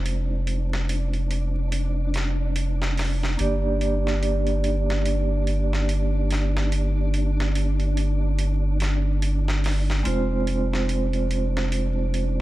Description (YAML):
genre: trip hop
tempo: 72 BPM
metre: 4/4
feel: swing 58% on 16ths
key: F dorian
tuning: A4 = 440 Hz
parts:
  - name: vibraphone with medium mallets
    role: accompaniment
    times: 0.0-12.4 s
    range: Ab3 to D5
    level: -29 LUFS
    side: right 2 dB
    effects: tremolo, low-pass filter, tape echo
  - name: round analog bass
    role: bass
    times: 0.0-12.4 s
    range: F1 to G1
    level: -23 LUFS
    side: equal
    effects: none
  - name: flickering grainy texture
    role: texture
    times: 0.0-12.4 s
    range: D4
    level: -33 LUFS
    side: equal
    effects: built-in reverb
  - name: boom bap sampler-style drum kit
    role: drums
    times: 0.1-12.4 s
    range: hi-hat, snare drum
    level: -32 LUFS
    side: right 1 dB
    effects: high-pass filter on snare, studio reverb, high-pass filter on hats
room: little or no reverb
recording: vinyl crackle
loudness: -21 LUFS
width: side -16 dB against mid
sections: 0.0-12.4 A section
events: filter sweep on vibraphone 0.0-12.4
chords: 0.0 Fm; 3.4 Gm; 10.1 Fm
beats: | 0.06 0.89 1.72 2.56 | 3.39 4.22 5.05 5.89 | 6.72 7.55 8.39 9.22 | 10.05 10.89 11.72